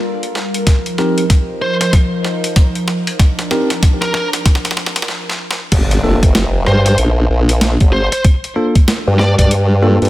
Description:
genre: glitch hop.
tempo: 95 BPM.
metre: 4/4.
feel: swing 61% on 16ths.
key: G minor.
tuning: A4 = 443 Hz.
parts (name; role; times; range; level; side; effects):
warbly tape-like pad; sustained chords; 0.0-5.1 s; F3 to Bb4; -21 LUFS; equal; chorus, built-in reverb, phaser, sidechain pumping.
boom bap sampler-style drum kit; drums; 0.2-10.1 s; crash cymbal, hi-hat, rim click, snare drum; -19 LUFS; equal; high-pass filter on snare, small room reverb, high-pass filter on hats, high-pass filter on cymbals.
electronic kick drum; drums; 0.7-9.5 s; none; -10 LUFS; equal; small room reverb.
bell-like tine electric piano; stabs; 1.0-10.1 s; Bb3 to Bb4; -19 LUFS; equal; sidechain pumping, low-pass filter, tape echo.
high-gain lead guitar; melody; 1.6-9.5 s; Bb4 to D5; -21 LUFS; equal; distortion, vintage 12-bit sampler grit, tape echo.
formant-sweep wobble bass; bass; 5.7-10.1 s; F1 to G2; -12 LUFS; equal; chorus, tube saturation.
impact; sound effects; 5.7-8.2 s; none; -22 LUFS; equal; none.
room: digital ambience.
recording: none.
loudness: -12 LUFS.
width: side -16 dB against mid.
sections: 0.0-5.7 A section; 5.7-10.1 B section.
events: build-up 0.0-5.7; drum fill 0.0-5.1, 5.1-5.7; stop 5.1-5.7; drop 5.7-10.1; impact 5.7-8.2.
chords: 0.0 Gm7; 0.7 F7sus4; 5.7 Gm7.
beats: 0.04 | 0.67 1.30 1.93 2.56 | 3.19 3.83 4.46 5.09 | 5.72 6.35 6.99 7.62 | 8.25 8.88 9.51.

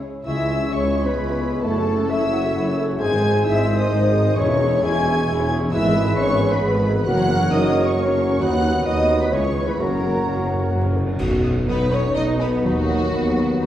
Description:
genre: classical, dramatic, fast romantic movement for symphony orchestra.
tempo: 132 BPM.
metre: 3/4.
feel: straight.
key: C# minor, B major from 5.7 s.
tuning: A4 = 440 Hz.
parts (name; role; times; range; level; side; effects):
warm symphonic violin section; second line; 0.0-13.7 s; F#4 to G#5; -28 LUFS; left 1 dB; none.
mellow bassoon; accompaniment; 0.0-10.9 s; E3 to A3; -28 LUFS; right 2 dB; none.
warm symphonic viola section; accompaniment; 0.0-13.7 s; G#3 to C#5; -28 LUFS; right 1 dB; none.
concert harp; arpeggios; 0.0-13.7 s; E2 to C#6; -28 LUFS; left 2 dB; none.
rich symphonic cello section; bass; 0.0-13.7 s; C#2 to D#4; -27 LUFS; equal; none.
warm studio double bass section; bass; 0.0-13.7 s; E1 to D#2; -28 LUFS; equal; none.
warm symphonic violin section; melody; 0.3-13.7 s; A5 to G#6; -31 LUFS; left 1 dB; none.
mellow oboe; second line; 0.3-10.9 s; A#4 to C#5; -32 LUFS; right 1 dB; none.
silver concert flute; second line; 0.3-10.7 s; A4 to G#5; -26 LUFS; equal; none.
mellow French horn section; sustained chords; 0.3-13.7 s; F#3 to G#4; -26 LUFS; left 1 dB; none.
mellow tuba; bass; 0.3-13.7 s; E1 to D#2; -26 LUFS; right 1 dB; none.
timpani; percussion; 7.1-7.7, 9.8-11.9 s; F#2 to B2; -28 LUFS; equal; none.
cymbal swell, clash cymbals and concert bass drum; percussion; 8.4-12.1 s; none; -31 LUFS; equal; none.
room: wet recital hall reverb, RT60 1.4 s.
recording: heard from further back in the room, vinyl crackle.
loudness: -17 LUFS.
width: side -11 dB against mid.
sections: 0.3-11.2 A section; 11.2-13.7 B section.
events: timpani fill 9.8-11.2; band accent 11.2-11.7.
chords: 0.3 C#m; 1.6 F#m7; 3.0 G#; 4.4 C#m/E; 5.7 E/G#; 7.1 F#; 8.4 B/D#; 9.3 C#m; 9.8 F#; 11.2 B; 12.6 B/D#.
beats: | 0.27 0.73 1.18 | 1.64 2.10 2.56 | 3.01 3.46 3.92 | 4.37 4.83 5.28 | 5.73 6.18 6.62 | 7.07 7.52 7.96 | 8.41 8.87 9.32 | 9.79 10.25 10.72 | 11.19 11.68 12.16 | 12.64 13.13 13.61.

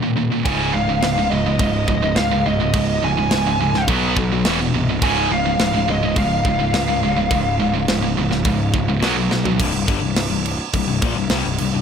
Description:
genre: heavy metal.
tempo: 105 BPM.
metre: 4/4.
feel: straight.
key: unclear.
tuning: A4 = 439 Hz.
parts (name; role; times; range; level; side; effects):
distorted electric guitar; riff; 0.0-11.8 s; C2 to B3; -23 LUFS; left 9 dB; distortion.
heavy high-gain guitar; riff; 0.0-9.6 s; Db2 to B3; -22 LUFS; right 9 dB; distortion.
bluesy overdriven lead guitar; melody; 0.5-9.0 s; Eb5 to Ab5; -22 LUFS; equal; distortion.
fuzz picked electric bass; bass; 0.5-11.8 s; C1 to Db2; -24 LUFS; equal; overdrive.
tight metal drum kit; drums; 0.5-11.7 s; crash cymbal, kick drum, snare drum, toms; -23 LUFS; right 1 dB; none.
room: little or no reverb.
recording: none.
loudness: -16 LUFS.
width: side -7 dB against mid.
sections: 0.0-9.6 A section; 9.6-11.8 B section.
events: drum fill 9.3.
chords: 0.5 Db; 3.9 B5; 4.5 E5; 5.0 Db; 9.0 B5; 9.6 C5.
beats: | 0.46 1.03 1.60 2.17 | 2.74 3.31 3.88 4.45 | 5.02 5.60 6.17 6.74 | 7.31 7.88 8.46 9.03 | 9.60 10.17 10.74 11.32.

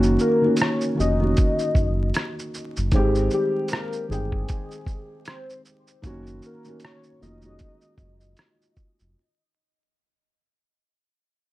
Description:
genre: lo-fi hip hop.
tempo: 77 BPM.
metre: 4/4.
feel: swing 58% on 16ths.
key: unclear.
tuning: A4 = 440 Hz.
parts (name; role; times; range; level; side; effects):
felt-muted upright piano; accompaniment; 0.0-9.2 s; Eb3 to G5; -25 LUFS; equal; none.
sub bass with octave; bass; 0.0-9.2 s; F1 to Ab1; -24 LUFS; equal; none.
lo-fi sampler-style drum kit; drums; 0.0-9.1 s; hi-hat, kick drum, rim click, shaker; -25 LUFS; equal; none.
warm velvety synth lead; melody; 0.2-8.3 s; G4 to Eb5; -27 LUFS; left 2 dB; chorus, tremolo, analog delay, plate reverb.
room: moderate studio reverb, RT60 0.6 s.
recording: vinyl crackle.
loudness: -20 LUFS.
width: side -17 dB against mid.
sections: 0.0-9.2 A section.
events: fade-out 0.0-9.2.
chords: 0.0 Gb6; 2.9 Abmaj7; 6.0 Gb6.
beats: 0.59 1.36 2.14 | 2.92 3.70 4.48 5.26 | 6.04 6.82 7.60 8.38.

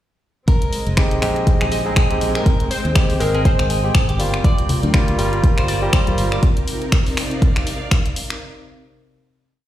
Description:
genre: deep house.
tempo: 121 BPM.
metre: 4/4.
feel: swing 57% on 16ths.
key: C minor.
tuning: A4 = 440 Hz.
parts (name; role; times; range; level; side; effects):
clean electric guitar; melody; 0.5-6.4 s; G4 to D5; -28 LUFS; right 1 dB; ping-pong delay.
fingered electric bass; bass; 0.5-6.4 s; F1 to Eb2; -22 LUFS; equal; sidechain pumping.
electronic kick drum; drums; 0.5-8.0 s; none; -16 LUFS; equal; none.
punchy analog drum machine; drums; 0.5-8.4 s; finger snaps, hi-hat; -25 LUFS; left 1 dB; none.
rich chamber string section; texture; 0.5-8.4 s; C3 to G5; -28 LUFS; right 1 dB; sidechain pumping.
barky tine electric piano; stabs; 1.0-6.4 s; G3 to Ab4; -24 LUFS; equal; sidechain pumping, ping-pong delay.
glassy wavetable pluck; melody; 1.7-5.9 s; Bb4 to Eb5; -27 LUFS; left 2 dB; chorus, ping-pong delay.
congas; percussion; 4.7-6.2 s; none; -24 LUFS; left 2 dB; none.
room: light reverb.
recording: played on a big sound system in a bare room, stone room reverb.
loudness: -15 LUFS.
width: side -13 dB against mid.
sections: 0.5-8.4 groove.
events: none.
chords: 0.5 Bb13sus4; 2.5 Abmaj7; 4.2 Gm7; 6.4 Cm11.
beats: | 0.48 0.97 1.47 1.97 | 2.46 2.96 3.45 3.95 | 4.45 4.94 5.44 5.93 | 6.43 6.92 7.42 7.92.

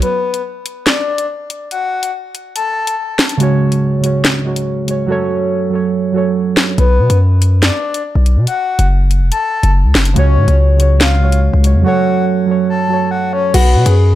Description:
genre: hip hop, drill.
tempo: 142 BPM.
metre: 4/4.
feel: half-time.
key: F# harmonic minor.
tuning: A4 = 441 Hz.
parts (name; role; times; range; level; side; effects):
breathy flute-like synth lead; second line; 0.0-3.0, 6.8-13.9 s; B4 to A5; -19 LUFS; left 4 dB; chorus, digital delay.
muted felt-like synth keys; accompaniment; 0.0, 3.4-6.8, 10.1-13.6 s; C#3 to C#5; -14 LUFS; right 3 dB; chorus.
distorted 808-style bass; bass; 0.0, 6.8-14.2 s; E#1 to B2; -10 LUFS; equal; distortion.
drill drum kit; drums; 0.0-14.0 s; crash cymbal, handclaps, hi-hat, snare drum; -16 LUFS; left 1 dB; none.
dark concert grand piano; melody; 13.5-14.2 s; F#4 to G#4; -15 LUFS; left 2 dB; none.
room: little or no reverb.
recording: none.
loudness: -11 LUFS.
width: side -14 dB against mid.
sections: 0.0-13.5 A section.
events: break 0.0-6.8, 11.9-13.5; hi-hats muted 5.1-6.8.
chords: 0.0 N.C.; 3.4 C#sus4; 5.1 F#m; 6.8 Bm; 8.5 F#m; 10.2 C#sus4; 11.9 F#m; 13.5 B5.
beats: | 0.02 0.44 0.87 1.29 | 1.71 2.13 2.56 2.98 | 3.40 3.82 4.25 4.67 | 5.09 5.51 5.94 6.36 | 6.78 7.20 7.63 8.05 | 8.47 8.89 9.32 9.74 | 10.16 10.58 11.01 11.43 | 11.85 12.27 12.70 13.12 | 13.54 13.96.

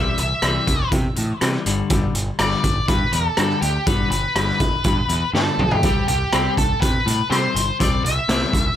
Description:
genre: quiet-loud alternative rock.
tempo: 122 BPM.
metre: 4/4.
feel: straight.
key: G major.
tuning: A4 = 441 Hz.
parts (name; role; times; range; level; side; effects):
octave-fuzz lead guitar; melody; 0.0-8.7 s; G4 to E5; -22 LUFS; left 1 dB; distortion.
clean electric guitar; arpeggios; 0.0-8.8 s; G2 to C4; -26 LUFS; left 6 dB; analog delay.
growling picked electric bass; bass; 0.0-8.7 s; G1 to C3; -24 LUFS; right 1 dB; overdrive.
raw garage drum kit; drums; 0.2-8.6 s; hi-hat, kick drum, rim click, snare drum, toms; -21 LUFS; right 1 dB; none.
room: little or no reverb.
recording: none.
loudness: -17 LUFS.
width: side -10 dB against mid.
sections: 0.0-8.8 A section.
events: drum fill 5.3-5.8.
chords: 0.0 C; 1.7 G; 5.8 C.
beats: 0.42 0.92 1.41 | 1.90 2.39 2.88 3.37 | 3.86 4.36 4.85 5.34 | 5.83 6.32 6.81 7.30 | 7.79 8.28.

